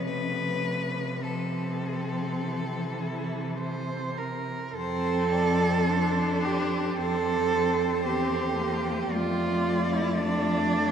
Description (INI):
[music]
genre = classical, lyrical piece for cello ensemble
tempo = 50-58 BPM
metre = 4/4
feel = rubato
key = F major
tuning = A4 = 440 Hz
[part]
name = rich cello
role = melody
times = 0.0-10.9 s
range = A4 to D5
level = -34 LUFS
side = left 5 dB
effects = none
[part]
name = rich cello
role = second line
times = 0.0-10.9 s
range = A3 to C5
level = -29 LUFS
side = right 4 dB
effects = none
[part]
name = rich cello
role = bass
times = 0.0-10.9 s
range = E2 to C3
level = -30 LUFS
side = right 1 dB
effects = none
[part]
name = rich cello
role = accompaniment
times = 0.1-10.9 s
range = E3 to D4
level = -32 LUFS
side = left 2 dB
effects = none
[sound]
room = wet cathedral reverb, RT60 7.0 s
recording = in a vast, echoing space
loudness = -25 LUFS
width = side -8 dB against mid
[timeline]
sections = 0.0-4.7 A section; 4.7-10.9 B section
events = none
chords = 0.0 F/C; 2.4 C; 4.7 F; 7.0 C7/F; 9.1 F